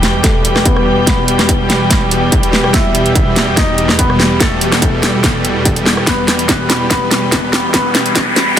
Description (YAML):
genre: heavy wobble dubstep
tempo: 144 BPM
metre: 4/4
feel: half-time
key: E minor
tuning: A4 = 440 Hz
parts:
  - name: bright grand piano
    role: melody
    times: 0.0-8.6 s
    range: A3 to E5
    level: -19 LUFS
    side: left 2 dB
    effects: low-pass filter, dub echo
  - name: supersaw chords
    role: sustained chords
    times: 0.0-8.6 s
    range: E2 to G3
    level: -17 LUFS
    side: right 1 dB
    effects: sidechain pumping
  - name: dubstep drum kit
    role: drums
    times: 0.0-8.6 s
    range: hi-hat, rim click, snare drum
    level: -14 LUFS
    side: equal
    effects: none
  - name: dark chamber string section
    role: texture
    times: 0.0-8.6 s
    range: G4 to G5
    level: -21 LUFS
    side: left 2 dB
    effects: sidechain pumping
  - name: electronic kick drum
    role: drums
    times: 0.2-8.6 s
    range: none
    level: -16 LUFS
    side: equal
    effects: distortion
  - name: riser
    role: sound effects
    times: 7.2-8.6 s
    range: none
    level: -19 LUFS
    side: left 2 dB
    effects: none
room: light reverb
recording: dense, heavily limited modern master, high-pass filter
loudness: -10 LUFS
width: side -10 dB against mid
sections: 0.0-8.6 A section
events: build-up 0.0-8.6; drum fill 0.0-8.6; filter sweep on grand piano 0.0-8.6; riser 7.2-8.6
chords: 0.0 Em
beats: 0.24 0.66 | 1.07 1.49 1.91 2.32 | 2.74 3.16 3.57 3.99 | 4.41 4.82 5.24 5.66 | 6.07 6.49 6.91 7.32 | 7.74 8.16 8.57